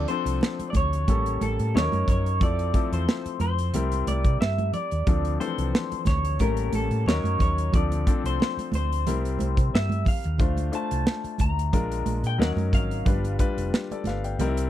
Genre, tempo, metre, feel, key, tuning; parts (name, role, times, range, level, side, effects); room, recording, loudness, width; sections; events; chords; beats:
lush 1970s-style soul; 90 BPM; 4/4; swing 54% on 16ths; D minor; A4 = 439 Hz
electric guitar through a small old amp; melody; 0.0-13.4 s; A4 to Bb5; -30 LUFS; equal; wide subtle chorus
clear baby grand piano; accompaniment; 0.0-14.7 s; E3 to G5; -30 LUFS; left 6 dB
hollow-body short-scale fingered electric bass; bass; 0.0-14.7 s; F1 to C3; -27 LUFS; equal
modern studio drum kit; drums; 0.1-14.7 s; hi-hat, kick drum, snare drum; -24 LUFS; equal
congas; percussion; 0.4-14.6 s; -33 LUFS; right 6 dB
little or no reverb; dry, close 1970s-style studio recording; -22 LUFS; side -12 dB against mid
0.0-14.7 A section
0.0 Dm7; 1.1 A7b9; 1.7 Ebm7; 2.4 Fmaj7; 3.7 C7; 5.1 Dm7; 6.4 A7b9; 7.1 Ebm7; 7.7 Dm7; 9.1 C7; 10.4 Dm7; 11.7 Bb7; 12.4 Ebm7; 13.1 G7
0.41 1.08 1.74 | 2.41 3.07 3.74 4.41 | 5.07 5.74 6.40 7.07 | 7.74 8.40 9.07 9.73 | 10.40 11.06 11.73 12.40 | 13.06 13.73 14.39